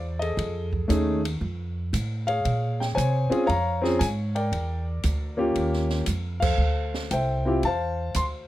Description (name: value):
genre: jazz piano trio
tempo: 116 BPM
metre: 4/4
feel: swing 67% on 8ths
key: unclear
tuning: A4 = 440 Hz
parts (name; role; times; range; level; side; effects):
- warm grand piano; melody; 0.0-8.5 s; A3 to C6; -26 LUFS; left 1 dB; none
- upright bass; bass; 0.0-8.5 s; C2 to C3; -26 LUFS; right 1 dB; none
- open jazz drum kit; drums; 0.2-8.3 s; crash cymbal, hi-hat, kick drum, ride cymbal, snare drum; -32 LUFS; right 3 dB; none
room: little or no reverb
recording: none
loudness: -23 LUFS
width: side -14 dB against mid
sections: 0.0-8.5 A section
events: band accent 6.3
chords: 0.4 F7alt; 2.4 Bbm9; 4.5 Em7b5; 5.6 Eb9; 6.6 Dm11